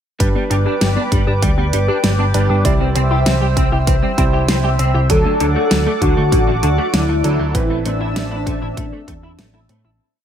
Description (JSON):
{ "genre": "synthwave", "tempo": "98 BPM", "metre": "4/4", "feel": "straight", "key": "G major", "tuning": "A4 = 439 Hz", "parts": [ { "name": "chorused pulse-width pad", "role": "sustained chords", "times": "0.2-10.0 s", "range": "C4 to E6", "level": "-23 LUFS", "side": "equal", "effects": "sidechain pumping" }, { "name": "wide unison pluck", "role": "arpeggios", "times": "0.2-9.9 s", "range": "E3 to G4", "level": "-26 LUFS", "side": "left 3 dB", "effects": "tape echo" }, { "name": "clean electric guitar", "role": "riff", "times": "0.2-9.9 s", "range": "D3 to G4", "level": "-25 LUFS", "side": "right 1 dB", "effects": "ensemble chorus, tape echo" }, { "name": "warm electric grand piano", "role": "stabs", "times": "0.2-9.0 s", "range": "E3 to D5", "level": "-25 LUFS", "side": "right 4 dB", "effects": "tape echo" }, { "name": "hollow-body short-scale picked electric bass", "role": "bass", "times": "0.2-10.0 s", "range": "G1 to A2", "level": "-18 LUFS", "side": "equal", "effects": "none" }, { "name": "electronic kick drum", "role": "drums", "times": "0.2-9.2 s", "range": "none", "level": "-19 LUFS", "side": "equal", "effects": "small room ambience" }, { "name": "pop drum kit", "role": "drums", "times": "0.2-9.8 s", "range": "hi-hat, snare drum", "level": "-22 LUFS", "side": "equal", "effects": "small room ambience" }, { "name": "wide unison lead", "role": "melody", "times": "5.1-9.9 s", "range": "D4 to A4", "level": "-20 LUFS", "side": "left 1 dB", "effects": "ensemble chorus, digital delay" } ], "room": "light reverb", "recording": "none", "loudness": "-14 LUFS", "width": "side -9 dB against mid", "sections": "0.2-10.0 verse", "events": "fade-out 6.7-10.0", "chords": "0.2 G; 2.6 C; 5.1 D; 7.5 Am" }